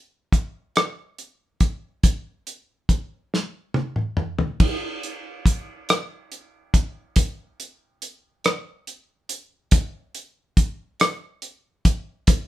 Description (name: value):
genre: pop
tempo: 47 BPM (dotted quarters)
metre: 6/8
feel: straight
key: none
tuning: none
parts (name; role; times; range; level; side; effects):
- damped 70s drum kit; drums; 0.3-12.5 s; crash cymbal, hi-hat, kick drum, rim click, snare drum, toms; -19 LUFS; equal; none
room: light reverb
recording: band playing live in one room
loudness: -22 LUFS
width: side -15 dB against mid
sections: 0.0-4.6 A section; 4.6-12.5 B section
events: drum fill 3.3-4.6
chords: none